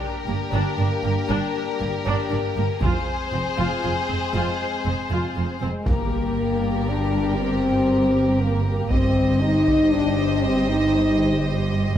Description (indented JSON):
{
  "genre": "cinematic, epic orchestral film score",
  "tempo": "118 BPM",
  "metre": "3/4",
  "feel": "straight",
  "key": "G phrygian",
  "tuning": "A4 = 440 Hz",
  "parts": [
    { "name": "rich studio violin section", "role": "melody", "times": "0.0-11.9 s", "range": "Bb4 to Eb5", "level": "-29 LUFS", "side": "left 4 dB", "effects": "none" },
    { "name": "warm symphonic violin section", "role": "second line", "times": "0.0-11.9 s", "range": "G4 to C5", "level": "-32 LUFS", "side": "left 3 dB", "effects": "none" },
    { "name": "mellow French horn section", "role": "sustained chords", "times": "0.0-11.4 s", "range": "Ab3 to Eb4", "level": "-23 LUFS", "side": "left 2 dB", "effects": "none" },
    { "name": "warm symphonic viola section", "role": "accompaniment", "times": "0.3-11.9 s", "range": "Bb3 to G4", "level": "-32 LUFS", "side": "right 1 dB", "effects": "none" },
    { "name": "dark symphonic double bass section", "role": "bass", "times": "0.3-11.9 s", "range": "F1 to G1", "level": "-27 LUFS", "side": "right 2 dB", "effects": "none" },
    { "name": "warm symphonic cello section", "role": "bass", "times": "0.3-12.0 s", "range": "F2 to G2", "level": "-27 LUFS", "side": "right 2 dB", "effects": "none" },
    { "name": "solo taiko drums", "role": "drums", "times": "2.8-12.0 s", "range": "none", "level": "-26 LUFS", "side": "equal", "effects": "none" },
    { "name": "impact", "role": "sound effects", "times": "5.9-7.4 s", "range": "none", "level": "-31 LUFS", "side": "equal", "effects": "none" }
  ],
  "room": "moderate scoring stage reverb, RT60 1.8 s",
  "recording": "none",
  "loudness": "-19 LUFS",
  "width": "side -10 dB against mid",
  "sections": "0.0-5.9 A section; 5.9-12.0 B section",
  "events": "build-up 0.0-5.9; impact 5.9-7.4",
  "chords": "0.0 Gm; 2.8 Fm; 5.9 Gm; 8.9 Cm/G"
}